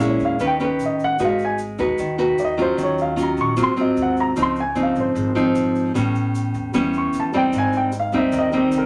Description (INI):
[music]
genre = bossa nova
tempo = 151 BPM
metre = 4/4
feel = straight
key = unclear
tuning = A4 = 439 Hz
[part]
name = nylon-string guitar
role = accompaniment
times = 0.0-8.9 s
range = Ab2 to B4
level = -22 LUFS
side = equal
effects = none
[part]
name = upright bass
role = bass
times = 0.0-8.9 s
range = Ab1 to Fb2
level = -33 LUFS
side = equal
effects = none
[part]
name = tube shaker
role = percussion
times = 0.0-8.9 s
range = none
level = -48 LUFS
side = equal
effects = none
[part]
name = warm baby grand piano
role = melody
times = 0.1-8.9 s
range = G4 to Db6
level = -25 LUFS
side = equal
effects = none
[sound]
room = wet studio ambience, RT60 0.5 s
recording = none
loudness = -20 LUFS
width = mono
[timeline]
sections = 0.0-8.9 A section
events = grand piano solo 0.0-8.9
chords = 0.4 Ebaug7; 1.2 Abm7; 2.8 Ebm9; 3.6 Ab6; 4.4 Dbmaj9; 5.9 A9; 7.5 Abmaj7